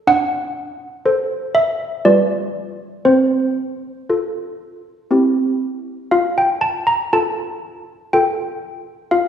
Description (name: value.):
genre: classical, tune for handbells.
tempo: 59 BPM.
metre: 3/4.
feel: straight.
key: F major.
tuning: A4 = 440 Hz.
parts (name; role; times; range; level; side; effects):
malleted handbells; solo; 0.0-9.3 s; G3 to Bb5; -16 LUFS; equal; none.
room: wet recital hall reverb, RT60 1.9 s.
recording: recorded in a church or concert hall.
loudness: -16 LUFS.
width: side -8 dB against mid.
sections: 0.0-9.3 A section.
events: none.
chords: 0.1 D7; 2.0 G7; 3.1 F/C; 5.1 C; 6.1 F.